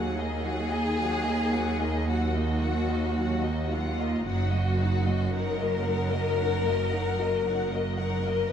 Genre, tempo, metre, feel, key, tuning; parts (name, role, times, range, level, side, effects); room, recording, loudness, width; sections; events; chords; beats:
classical, slow romantic movement for string orchestra; 56 BPM; 4/4; rubato; Eb minor; A4 = 440 Hz
warm symphonic violin section; melody; 0.0-8.5 s; Eb5 to Gb5; -37 LUFS; left 4 dB
rich symphonic violin section; second line; 0.0-8.5 s; F4 to Cb5; -30 LUFS; left 4 dB
rich symphonic viola section; accompaniment; 0.0-8.5 s; Gb3 to Gb4; -34 LUFS; left 1 dB
clear symphonic cello section; bass; 0.0-8.5 s; Eb2 to Gb2; -30 LUFS; right 2 dB
rich symphonic double bass section; bass; 0.0-8.5 s; Gb1 to Eb2; -30 LUFS; right 2 dB
wet recital hall reverb, RT60 1.7 s; dark, warm production; -25 LUFS; side -8 dB against mid
0.0-8.5 A section
0.0 Ebm; 4.3 Ebm/Gb
1.00 2.10 3.19 | 4.27 5.33 6.40 7.47 | 8.51